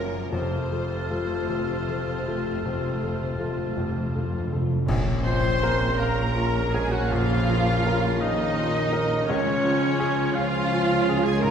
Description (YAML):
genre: classical, romantic movement for piano and orchestra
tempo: 50-56 BPM (dotted quarters)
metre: 12/8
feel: rubato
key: Bb minor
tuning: A4 = 440 Hz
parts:
  - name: warm baby grand piano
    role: melody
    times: 0.0-11.5 s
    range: F1 to F5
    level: -28 LUFS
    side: left 2 dB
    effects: none
  - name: warm studio violin section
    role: melody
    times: 0.0-11.5 s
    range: Bb4 to C6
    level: -33 LUFS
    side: equal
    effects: none
  - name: clear clarinet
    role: second line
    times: 0.0-11.5 s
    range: F4 to Bb4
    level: -38 LUFS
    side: right 1 dB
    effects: none
  - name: clear oboe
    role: second line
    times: 0.0-11.5 s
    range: Db4 to A5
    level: -34 LUFS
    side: right 2 dB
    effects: none
  - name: warm studio violin section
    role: second line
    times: 0.0-11.5 s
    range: Db4 to C5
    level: -34 LUFS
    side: left 2 dB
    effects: none
  - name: clear studio viola section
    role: accompaniment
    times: 0.0-11.5 s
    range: A3 to C5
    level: -32 LUFS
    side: right 2 dB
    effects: none
  - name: mellow French horn section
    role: sustained chords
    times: 0.0-11.5 s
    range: Db3 to F4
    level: -32 LUFS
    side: left 4 dB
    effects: none
  - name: clear studio double bass section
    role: bass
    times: 0.0-11.5 s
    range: F1 to Db2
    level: -32 LUFS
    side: right 2 dB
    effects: none
  - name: warm symphonic cello section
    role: bass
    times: 0.0-11.5 s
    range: F2 to Db3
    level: -33 LUFS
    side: right 2 dB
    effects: none
  - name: bright concert flute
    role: second line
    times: 0.3-11.5 s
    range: Db5 to F6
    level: -35 LUFS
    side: left 1 dB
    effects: none
  - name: warm bassoon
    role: accompaniment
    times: 0.3-11.5 s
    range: C3 to Db4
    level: -35 LUFS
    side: right 1 dB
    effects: none
  - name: timpani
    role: percussion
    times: 0.3-5.9 s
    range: F2 to Bb2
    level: -31 LUFS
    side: right 1 dB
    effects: none
  - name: dark tuba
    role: bass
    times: 4.9-11.5 s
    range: Bb1 to Db2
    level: -32 LUFS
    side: right 1 dB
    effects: none
  - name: clash cymbals and concert bass drum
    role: percussion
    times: 4.9-6.3 s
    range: none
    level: -33 LUFS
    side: equal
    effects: none
room: wet scoring stage reverb, RT60 1.6 s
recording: heard from further back in the room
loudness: -22 LUFS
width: side -8 dB against mid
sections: 0.0-4.9 A section; 4.9-11.5 B section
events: timpani fill 0.3-4.9; band accent 4.9-5.6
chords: 0.3 F; 4.9 Bbm; 9.3 Db